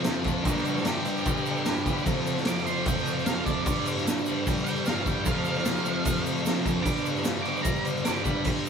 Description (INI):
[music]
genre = garage rock duo or trio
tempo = 150 BPM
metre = 4/4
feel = straight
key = G mixolydian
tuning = A4 = 440 Hz
[part]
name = overdriven combo organ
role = sustained chords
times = 0.0-8.4 s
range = D4 to B5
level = -37 LUFS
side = equal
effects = none
[part]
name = thick fuzz guitar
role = riff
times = 0.0-8.7 s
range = F2 to G3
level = -28 LUFS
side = equal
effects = distortion
[part]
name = raw garage drum kit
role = drums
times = 0.0-8.7 s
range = crash cymbal, kick drum, snare drum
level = -28 LUFS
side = equal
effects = none
[part]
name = egg shaker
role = percussion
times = 0.1-8.7 s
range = none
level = -42 LUFS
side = right 6 dB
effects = none
[part]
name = octave-fuzz lead guitar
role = melody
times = 0.4-8.4 s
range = D4 to D6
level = -34 LUFS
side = right 4 dB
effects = distortion
[sound]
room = light reverb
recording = band playing live in one room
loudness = -24 LUFS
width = side -6 dB against mid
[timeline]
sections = 0.0-8.5 A section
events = lead electric guitar solo 0.0-8.5; transistor combo organ fill 1.3-2.1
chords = 0.5 G; 2.1 F; 3.7 G; 5.3 F; 6.9 G